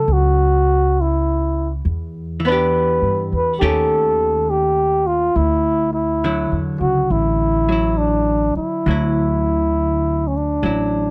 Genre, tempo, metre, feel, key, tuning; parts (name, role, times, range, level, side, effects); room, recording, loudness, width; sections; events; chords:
jazz ballad; 68 BPM; 4/4; swing 66% on 8ths; D major; A4 = 439 Hz
trumpet with bucket mute; melody; 0.0-11.1 s; C#4 to B4; -20 LUFS; equal
archtop guitar, miked and amplified; accompaniment; 0.0-11.1 s; D3 to A4; -26 LUFS; equal
upright bass; bass; 0.0-11.1 s; A1 to G2; -23 LUFS; equal
small room ambience; dry, close 1970s-style studio recording; -18 LUFS; mono
0.0-11.1 A section
0.0 F#m7; 1.8 Em7; 3.6 Eb7#11; 5.4 Dadd9